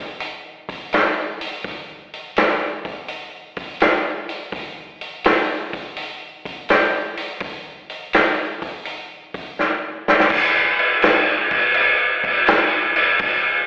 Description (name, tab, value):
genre	rock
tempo	83 BPM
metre	4/4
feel	swing 67% on 8ths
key	none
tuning	none
part	vintage drum kit	drums	0.2-13.4 s	crash cymbal, hi-hat, kick drum, snare drum	-17 LUFS	equal	none
room	wet club reverb, RT60 0.5 s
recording	live gig heard through the venue's PA, recital hall reverb, telephone sound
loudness	-16 LUFS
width	side -38 dB against mid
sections	0.0-10.3 A section; 10.3-13.7 A section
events	drum fill 9.6-10.3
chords	none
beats	0.20 0.92 | 1.64 2.36 3.09 3.81 | 4.53 5.25 5.97 6.69 | 7.42 8.14 8.86 9.58 | 10.31 11.03 11.76 12.48 | 13.21